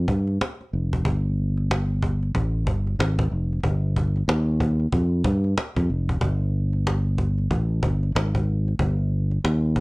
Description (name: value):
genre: hip hop, jazz-hop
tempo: 93 BPM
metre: 4/4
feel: swing 62% on 16ths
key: unclear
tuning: A4 = 440 Hz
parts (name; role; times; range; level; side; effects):
- fingered electric bass; bass; 0.0-9.8 s; F1 to G2; -22 LUFS; equal; tube saturation
- cajon; drums; 0.1-9.8 s; none; -26 LUFS; equal; vintage 12-bit sampler grit
room: little or no reverb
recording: dry, gritty hardware recording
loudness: -21 LUFS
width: side -25 dB against mid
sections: 0.0-6.2 A section; 6.2-9.8 A section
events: none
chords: none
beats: 0.41 | 1.05 1.70 2.34 2.99 | 3.63 4.28 4.92 5.57 | 6.21 6.86 7.50 8.15 | 8.79 9.44